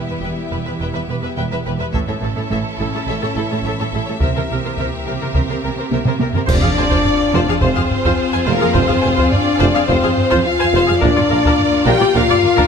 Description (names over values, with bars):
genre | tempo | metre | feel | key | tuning
cinematic, epic orchestral film score | 106 BPM | 4/4 | straight | F dorian from 6.5 s | A4 = 440 Hz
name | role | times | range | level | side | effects
clear symphonic string section | sustained chords | 0.0-12.7 s | Bb3 to F5 | -24 LUFS | left 1 dB | none
mellow French horn section | sustained chords | 0.0-12.7 s | E3 to G4 | -20 LUFS | left 5 dB | none
clear studio violin section | melody | 0.1-12.7 s | A4 to G5 | -27 LUFS | left 1 dB | none
warm symphonic violin section | second line | 0.1-12.7 s | E4 to G5 | -24 LUFS | equal | none
clear studio viola section | accompaniment | 0.1-12.6 s | D4 to Ab5 | -22 LUFS | equal | none
rich studio cello section | bass | 0.1-12.6 s | E2 to C3 | -24 LUFS | right 3 dB | none
clear symphonic double bass section | bass | 0.2-12.2 s | E1 to C2 | -24 LUFS | right 4 dB | none
taiko ensemble | drums | 1.9-12.7 s | none | -20 LUFS | equal | none
cymbal swell, clash cymbals and concert bass drum | percussion | 4.2-7.6 s | none | -26 LUFS | equal | none
warm tuba | bass | 6.5-12.2 s | F1 to Bb1 | -25 LUFS | right 5 dB | none
timpani | percussion | 6.5-7.3 s | F2 | -28 LUFS | left 1 dB | none
room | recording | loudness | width
moderate scoring stage reverb, RT60 1.6 s | close, detailed microphones | -14 LUFS | side -6 dB against mid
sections
0.0-6.5 A section; 6.5-12.7 B section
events
drum fill 5.9-6.5; band accent 6.5-7.1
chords
0.0 Em; 1.9 A; 4.2 C7; 6.5 Fm; 11.0 Bb